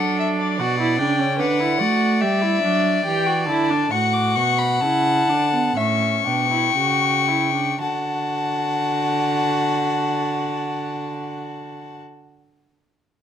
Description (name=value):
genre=classical, baroque-style fugue for string quartet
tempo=54-77 BPM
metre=4/4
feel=straight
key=D major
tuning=A4 = 439 Hz
part: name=warm violin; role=melody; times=0.0-12.0 s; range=D5 to D6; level=-23 LUFS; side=left 8 dB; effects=none
part: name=dark violin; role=second line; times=0.0-12.0 s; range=A4 to G5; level=-24 LUFS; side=left 2 dB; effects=none
part: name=rich viola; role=accompaniment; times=0.0-12.0 s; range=B3 to G4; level=-25 LUFS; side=right 5 dB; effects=none
part: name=warm cello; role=bass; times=0.0-12.0 s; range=A2 to A3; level=-24 LUFS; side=right 4 dB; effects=none
room=light reverb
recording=close, detailed microphones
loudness=-18 LUFS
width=side -9 dB against mid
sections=0.0-7.8 A section; 7.8-12.2 B section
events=slowing down 0.0-7.8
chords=0.0 D; 0.6 Bm; 2.2 Em7; 3.9 D/A; 7.8 D